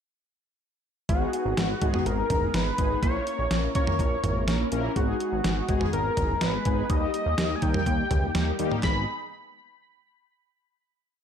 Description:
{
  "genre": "synth-pop",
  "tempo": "124 BPM",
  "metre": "4/4",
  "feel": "straight",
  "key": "G# minor",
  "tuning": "A4 = 440 Hz",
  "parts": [
    { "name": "octave-doubled lead", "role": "melody", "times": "1.1-9.1 s", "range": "F#4 to B5", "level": "-29 LUFS", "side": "equal", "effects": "chorus, ping-pong delay" },
    { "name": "mellow synth brass", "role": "accompaniment", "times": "1.1-9.1 s", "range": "G3 to B4", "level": "-30 LUFS", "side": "left 2 dB", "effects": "chorus" },
    { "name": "chorused synth bass", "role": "bass", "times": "1.1-9.1 s", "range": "F#1 to D#2", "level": "-30 LUFS", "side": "equal", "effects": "none" },
    { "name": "clean 12-bit digital drum machine", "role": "drums", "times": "1.1-8.9 s", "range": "handclaps, hi-hat, kick drum, snare drum, toms", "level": "-27 LUFS", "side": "right 1 dB", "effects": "none" }
  ],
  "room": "moderate plate reverb, RT60 1.1 s",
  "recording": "dreamy mix soaked in reverb",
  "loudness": "-23 LUFS",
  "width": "side -8 dB against mid",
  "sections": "1.1-8.8 verse; 8.8-10.8 final chord",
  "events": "none",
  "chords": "1.1 G#m7; 3.0 A#dim; 5.0 G#m7; 6.9 D#; 8.8 G#m"
}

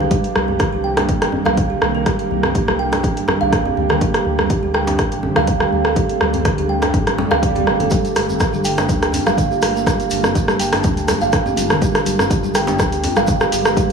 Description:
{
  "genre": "afro house",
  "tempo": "123 BPM",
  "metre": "4/4",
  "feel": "swing 53% on 16ths",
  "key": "G minor",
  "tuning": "A4 = 440 Hz",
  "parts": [
    { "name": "ethereal airy pad", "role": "sustained chords", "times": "0.0-13.9 s", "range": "D3 to A5", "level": "-24 LUFS", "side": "right 1 dB", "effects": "ensemble chorus, built-in reverb, sidechain pumping" },
    { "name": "kalimba", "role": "arpeggios", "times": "0.0-13.9 s", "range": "D4 to G5", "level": "-21 LUFS", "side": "right 4 dB", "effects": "sidechain pumping, dub echo" },
    { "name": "round analog bass", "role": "bass", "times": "0.0-13.8 s", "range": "G1 to D2", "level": "-26 LUFS", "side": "equal", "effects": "sidechain pumping" },
    { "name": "congas", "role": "percussion", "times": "0.0-13.9 s", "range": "none", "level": "-26 LUFS", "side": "left 4 dB", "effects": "none" },
    { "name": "deep house drum kit", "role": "drums", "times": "0.1-13.9 s", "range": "hi-hat, rim click", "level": "-20 LUFS", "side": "equal", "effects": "none" },
    { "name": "electronic kick drum", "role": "drums", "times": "0.1-13.9 s", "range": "none", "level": "-20 LUFS", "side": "equal", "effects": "none" },
    { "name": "djembe", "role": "percussion", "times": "0.5-13.1 s", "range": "none", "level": "-28 LUFS", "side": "right 1 dB", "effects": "none" },
    { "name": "swell", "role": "sound effects", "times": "7.2-7.9 s", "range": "none", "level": "-28 LUFS", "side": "right 2 dB", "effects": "none" },
    { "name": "shekere", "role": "percussion", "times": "7.9-13.9 s", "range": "none", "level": "-31 LUFS", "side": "right 3 dB", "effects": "none" }
  ],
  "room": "light reverb, studio ambience",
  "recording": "small room ambience",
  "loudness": "-15 LUFS",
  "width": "side -6 dB against mid",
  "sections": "0.0-13.9 A section",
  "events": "swell 7.2-7.9",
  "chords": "0.1 Cm7; 4.0 D7sus4; 7.9 Gm9; 11.8 G7b9"
}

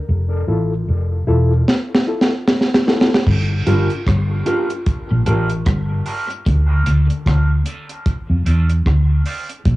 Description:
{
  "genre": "dub reggae",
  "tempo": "75 BPM",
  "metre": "4/4",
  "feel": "swing 59% on 16ths",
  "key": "G dorian",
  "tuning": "A4 = 439 Hz",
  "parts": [
    { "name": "vintage muted fingered electric bass", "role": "bass", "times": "0.1-9.8 s", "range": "E1 to F2", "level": "-15 LUFS", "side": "equal", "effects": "transformer saturation" },
    { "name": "reed electric piano", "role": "stabs", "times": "0.5-9.5 s", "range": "E4 to D5", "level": "-25 LUFS", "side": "left 2 dB", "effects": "fast tremolo, high-pass filter, low-pass filter, cassette tape, dub echo" },
    { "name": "deep reggae drum kit", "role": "drums", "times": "1.7-9.8 s", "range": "crash cymbal, hi-hat, kick drum, rim click, snare drum", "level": "-17 LUFS", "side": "equal", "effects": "cassette tape" },
    { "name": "electric guitar at the edge of break-up", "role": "riff", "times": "3.3-6.7 s", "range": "G2 to D3", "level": "-25 LUFS", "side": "left 4 dB", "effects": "ensemble chorus, cassette tape, dub echo" },
    { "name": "mellow electric guitar", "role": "accompaniment", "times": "3.7-9.5 s", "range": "C4 to Bb4", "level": "-25 LUFS", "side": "right 3 dB", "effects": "high-pass filter, low-pass filter, cassette tape, dub echo" }
  ],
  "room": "light reverb, small room reverb",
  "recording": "home recording on cassette, small room ambience",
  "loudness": "-15 LUFS",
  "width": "side -18 dB against mid",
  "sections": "0.0-3.3 A section; 3.3-9.8 B section",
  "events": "break 0.0-3.3; drum fill 1.7-3.3; filter sweep 3.3-9.7",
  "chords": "0.1 Fmaj7; 3.3 Gm7; 6.5 Dm7"
}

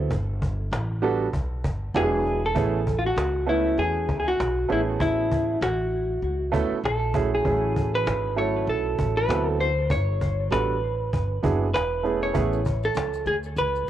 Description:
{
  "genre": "hip hop, jazz-hop",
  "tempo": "98 BPM",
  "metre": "4/4",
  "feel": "swing 60% on 16ths",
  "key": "A major",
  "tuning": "A4 = 439 Hz",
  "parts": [
    { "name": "vintage hollow-body jazz guitar", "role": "melody", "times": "0.0-13.9 s", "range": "E4 to C#5", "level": "-25 LUFS", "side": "left 1 dB", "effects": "cassette tape, analog delay" },
    { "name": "warm upright piano", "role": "accompaniment", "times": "0.0-12.6 s", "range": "F#3 to B4", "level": "-27 LUFS", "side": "right 6 dB", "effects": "none" },
    { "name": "upright bass", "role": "bass", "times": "0.0-13.9 s", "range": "E1 to E2", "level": "-28 LUFS", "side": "equal", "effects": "none" },
    { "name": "cajon", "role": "drums", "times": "0.1-13.7 s", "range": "none", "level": "-29 LUFS", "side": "equal", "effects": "none" },
    { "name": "maracas and congas", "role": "percussion", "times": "12.3-13.9 s", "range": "none", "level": "-43 LUFS", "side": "left 8 dB", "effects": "none" }
  ],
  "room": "light reverb",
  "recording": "home recording on cassette",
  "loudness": "-22 LUFS",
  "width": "side -11 dB against mid",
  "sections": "0.0-2.6 A section; 2.6-13.9 A section",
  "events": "none",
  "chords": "0.1 Gmaj9; 1.9 E7; 2.6 Amaj9; 4.7 F#m11/A; 7.5 Amaj13; 9.3 D13; 9.9 Gmaj9; 11.7 E; 12.3 Amaj9"
}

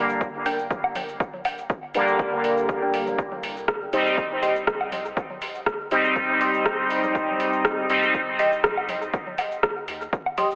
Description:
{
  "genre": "dub techno",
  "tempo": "121 BPM",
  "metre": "4/4",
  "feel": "swing 53% on 16ths",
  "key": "unclear",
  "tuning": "A4 = 440 Hz",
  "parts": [
    { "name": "resonant sweep polysynth", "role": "stabs", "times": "0.0-8.2 s", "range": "D3 to Eb4", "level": "-23 LUFS", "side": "equal", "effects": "chorus, phaser, sidechain pumping, dub echo" },
    { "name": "soft dub sub bass", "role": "bass", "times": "0.0-10.6 s", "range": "D1 to Eb2", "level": "-47 LUFS", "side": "equal", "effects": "sidechain pumping" },
    { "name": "deep house drum kit", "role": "drums", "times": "0.1-10.6 s", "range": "cabasa, hi-hat, rim click", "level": "-27 LUFS", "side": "equal", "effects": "overdrive, dub echo" },
    { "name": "electronic kick drum", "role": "drums", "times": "0.2-10.2 s", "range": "none", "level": "-28 LUFS", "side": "equal", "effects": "none" },
    { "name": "filtered dub chord stab", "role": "riff", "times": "0.5-10.5 s", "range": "D4 to C6", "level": "-28 LUFS", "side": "equal", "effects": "phaser, sidechain pumping, dub echo" },
    { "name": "congas and woodblock", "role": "percussion", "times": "0.7-10.5 s", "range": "none", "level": "-30 LUFS", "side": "equal", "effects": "sidechain pumping on perc, dub echo" }
  ],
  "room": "moderate huge ambient reverb, RT60 4.5 s",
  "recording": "heavily compressed radio sound, multiband compression, vinyl crackle, telephone sound",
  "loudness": "-21 LUFS",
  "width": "side -32 dB against mid",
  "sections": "0.0-10.6 A section",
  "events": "none",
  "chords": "0.0 Gm; 3.2 Cm"
}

